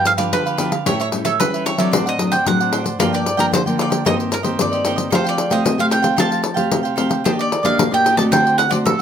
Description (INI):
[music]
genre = samba and choro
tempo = 113 BPM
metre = 4/4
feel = straight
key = unclear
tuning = A4 = 440 Hz
[part]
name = bowl-back mandolin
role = melody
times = 0.0-9.0 s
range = A4 to A5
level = -19 LUFS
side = right 2 dB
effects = none
[part]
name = cavaquinho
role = accompaniment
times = 0.0-9.0 s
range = D4 to G5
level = -24 LUFS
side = right 6 dB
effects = none
[part]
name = nylon-string guitar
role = accompaniment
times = 0.0-9.0 s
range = G2 to G4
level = -21 LUFS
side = left 2 dB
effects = none
[part]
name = pandeiro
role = percussion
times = 0.1-9.0 s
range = none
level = -21 LUFS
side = left 3 dB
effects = none
[sound]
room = moderate studio reverb, RT60 0.6 s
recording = close, detailed microphones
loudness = -15 LUFS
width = side -8 dB against mid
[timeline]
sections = 0.0-9.0 A section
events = none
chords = 0.0 G7; 0.9 A7; 1.9 D7/A; 3.0 Gm7; 4.1 Eb6/G; 5.1 Fadd9; 7.3 Ebmaj7; 8.3 D7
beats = 0.33 | 0.86 1.40 1.93 2.46 | 2.99 3.53 4.06 4.59 | 5.12 5.66 6.19 6.72 | 7.25 7.79 8.32 8.85